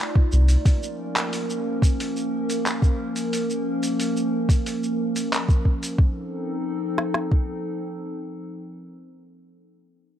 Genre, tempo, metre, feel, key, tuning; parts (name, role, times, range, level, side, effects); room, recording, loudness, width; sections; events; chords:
folktronica; 90 BPM; 4/4; straight; F mixolydian; A4 = 438 Hz
warbly tape-like pad; sustained chords; 0.0-9.2 s; F3 to D5; -26 LUFS; equal; chorus, built-in reverb
organic electronic drum kit; drums; 0.2-7.5 s; kick drum, snare drum; -18 LUFS; equal
round analog bass; bass; 0.3-0.6 s; C2; -15 LUFS; equal; tube saturation
lo-fi sampler-style drum kit; drums; 0.3-6.0 s; handclaps, hi-hat, shaker; -29 LUFS; equal
light reverb; dark, warm production; -21 LUFS; side -10 dB against mid
0.0-6.0 A section; 6.0-8.7 B section
0.0 F7; 0.7 Bbm; 6.0 F7